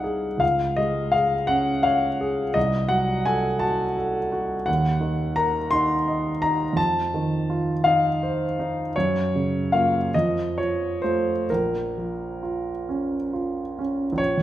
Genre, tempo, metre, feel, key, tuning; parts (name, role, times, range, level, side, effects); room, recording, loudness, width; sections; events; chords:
classical, romantic nocturne for solo piano; 42-58 BPM (dotted quarters); 6/8; rubato; Bb minor from 4.7 s; A4 = 440 Hz
warm grand piano; solo; 0.0-14.4 s; Bb1 to C6; -21 LUFS; equal
wet recital hall reverb, RT60 1.4 s; -21 LUFS; side -13 dB against mid
0.0-14.2 A section
0.4 Db; 2.6 Cdim7; 4.7 Ebm; 6.8 F7; 8.9 Gbmaj7; 10.1 F; 11.5 Bbm